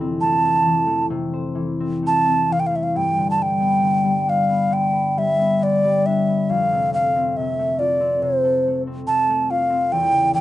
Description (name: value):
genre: celtic folk, Celtic slow air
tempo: 68 BPM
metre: 4/4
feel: rubato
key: unclear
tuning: A4 = 439 Hz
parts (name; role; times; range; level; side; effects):
- concert harp; accompaniment; 0.0-10.4 s; E2 to C5; -22 LUFS; left 3 dB; none
- breathy alto ocarina; melody; 0.2-10.4 s; C5 to A5; -18 LUFS; right 1 dB; none
room: light reverb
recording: rough home demo mix, nothing above 10.6 kHz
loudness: -17 LUFS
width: side -14 dB against mid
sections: 0.0-2.9 A section; 2.9-10.4 B section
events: none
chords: 0.0 Fmaj7; 2.9 G; 6.5 F